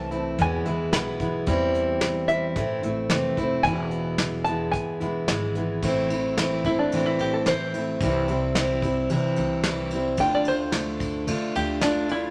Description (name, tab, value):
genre	acoustic folk duo or small band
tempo	110 BPM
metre	4/4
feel	straight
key	A minor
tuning	A4 = 439 Hz
part	open-back banjo	melody	0.0-12.3 s	D4 to B5	-28 LUFS	equal	none
part	picked plugged-in steel-string acoustic guitar	accompaniment	0.0-12.3 s	E2 to F4	-28 LUFS	equal	none
part	upright bass	bass	0.0-12.3 s	E1 to D3	-34 LUFS	equal	none
part	soft brush drum kit	drums	0.1-12.2 s	hi-hat, kick drum, ride cymbal, snare drum	-32 LUFS	equal	none
room	moderate large studio reverb, RT60 1.3 s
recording	none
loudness	-25 LUFS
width	mono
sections	0.0-5.8 A section; 5.8-12.3 B section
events	five-string banjo solo 5.8-12.3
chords	0.4 E; 1.5 C/E; 2.6 Am; 3.7 E; 5.8 Am; 8.0 C; 10.2 Dm